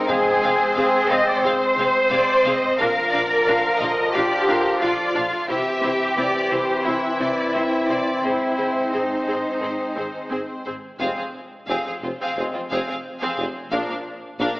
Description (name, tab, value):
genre	cinematic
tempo	88 BPM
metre	4/4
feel	straight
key	F dorian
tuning	A4 = 438 Hz
part	warm symphonic violin section	second line	0.0-14.6 s	F4 to F5	-27 LUFS	equal	none
part	warm French horn section	sustained chords	0.0-14.0 s	D3 to D4	-25 LUFS	equal	none
part	warm symphonic cello section	bass	0.0-14.6 s	F2 to Eb5	-21 LUFS	equal	none
part	warm symphonic violin section	melody	0.1-14.6 s	C5 to F5	-31 LUFS	left 1 dB	none
part	warm symphonic viola section	accompaniment	0.1-14.6 s	D3 to Ab4	-28 LUFS	equal	none
part	warm symphonic double bass section	bass	0.1-14.5 s	F1 to C2	-40 LUFS	equal	none
part	timpani	percussion	0.1-1.1 s	F2	-39 LUFS	equal	none
part	warm tuba	bass	11.0-14.5 s	F1 to Bb1	-30 LUFS	equal	none
room	wet scoring stage reverb, RT60 1.9 s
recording	AM radio sound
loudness	-19 LUFS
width	side -21 dB against mid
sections	0.0-11.0 A section; 11.0-14.6 B section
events	none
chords	0.1 Fm; 2.8 Bb; 5.5 C; 8.2 Ab; 11.0 Fm; 13.7 Bb